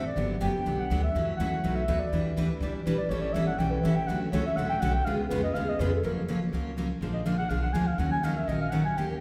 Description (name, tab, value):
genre	acoustic string swing (jazz manouche)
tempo	246 BPM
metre	4/4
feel	swing 54% on 8ths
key	F# major from 6.0 s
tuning	A4 = 440 Hz
part	breathy clarinet	second line	0.0-9.2 s	F#4 to G#5	-34 LUFS	equal	none
part	picked steel-string acoustic guitar	accompaniment	0.0-9.2 s	B2 to B4	-33 LUFS	equal	none
part	picked steel-string acoustic guitar	accompaniment	0.0-9.2 s	B2 to B4	-36 LUFS	equal	none
part	upright bass	bass	0.0-9.2 s	F#1 to F#2	-35 LUFS	equal	none
room	wet recital hall reverb, RT60 1.8 s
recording	recorded in a church or concert hall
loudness	-28 LUFS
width	mono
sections	0.0-6.0 A section; 6.0-9.2 A section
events	clarinet solo 0.0-9.2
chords	0.2 Gmaj7; 1.1 F#m7; 1.6 B7; 2.1 Em7; 3.1 A7; 4.1 Dmaj7; 5.1 C#7; 6.0 F#maj7; 7.0 A#7; 8.0 D#m7